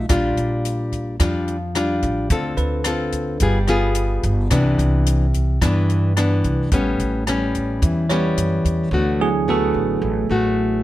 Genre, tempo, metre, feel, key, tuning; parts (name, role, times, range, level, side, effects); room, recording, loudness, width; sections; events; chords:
bossa nova; 109 BPM; 4/4; straight; A4 = 439 Hz
nylon-string guitar; accompaniment; 0.0-10.8 s; G2 to A4; -20 LUFS; left 2 dB
upright bass; bass; 0.0-10.8 s; G1 to G2; -22 LUFS; right 1 dB
compact cocktail drum kit; drums; 0.1-8.8 s; hi-hat, kick drum, rim click; -23 LUFS; equal
bell-like tine electric piano; accompaniment; 2.6-3.6, 8.1-10.8 s; F#3 to C#5; -24 LUFS; right 8 dB
light reverb; -17 LUFS; side -15 dB against mid
0.0-8.9 A section; 8.9-10.8 B section
tine electric piano solo 8.9-10.8
0.1 Bb6; 2.3 Dm7; 3.4 G7b9; 4.5 Cmaj9; 6.7 A9; 8.9 D6